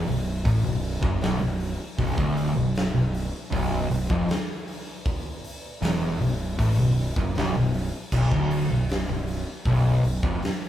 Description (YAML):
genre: stoner and doom metal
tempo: 78 BPM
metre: 4/4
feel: straight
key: B minor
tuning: A4 = 440 Hz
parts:
  - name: fuzz guitar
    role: riff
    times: 0.0-10.4 s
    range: B1 to A2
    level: -23 LUFS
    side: equal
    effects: distortion
  - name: fuzz fingered electric bass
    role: bass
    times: 0.0-10.4 s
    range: B0 to A1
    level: -31 LUFS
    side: equal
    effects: overdrive
  - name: big rock drum kit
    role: drums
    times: 0.1-10.6 s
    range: crash cymbal, hi-hat, kick drum, snare drum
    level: -29 LUFS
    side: equal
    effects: none
room: light reverb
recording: band playing live in one room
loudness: -22 LUFS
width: side -11 dB against mid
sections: 0.0-10.7 A section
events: none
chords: 0.0 Bm